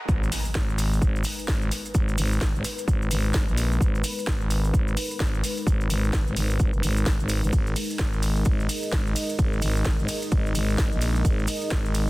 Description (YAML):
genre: bass house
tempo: 129 BPM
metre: 4/4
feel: swing 60% on 16ths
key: G# minor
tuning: A4 = 440 Hz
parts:
  - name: noise sweep and impact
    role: sound effects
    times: 0.0-1.9 s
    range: none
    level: -34 LUFS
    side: equal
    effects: none
  - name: dark analog pad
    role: sustained chords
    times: 1.3-12.1 s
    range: G#3 to D#5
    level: -33 LUFS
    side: equal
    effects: chorus, sidechain pumping
  - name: growling FM bass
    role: bass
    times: 0.1-12.1 s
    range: F#1 to A#1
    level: -25 LUFS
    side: equal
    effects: tube saturation, sidechain pumping
  - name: electronic kick drum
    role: drums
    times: 0.1-11.8 s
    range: none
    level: -24 LUFS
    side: equal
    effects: none
  - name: maracas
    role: percussion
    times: 0.1-12.1 s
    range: none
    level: -38 LUFS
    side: right 2 dB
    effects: none
  - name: house drum kit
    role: drums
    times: 0.3-12.1 s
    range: hi-hat, ride cymbal, snare drum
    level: -32 LUFS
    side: equal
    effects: none
room: little or no reverb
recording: dense, heavily limited modern master, high-pass filter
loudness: -22 LUFS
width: side -20 dB against mid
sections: 0.1-12.1 A section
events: drop 0.1-12.1; impact 0.1-1.9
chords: 0.1 G#madd9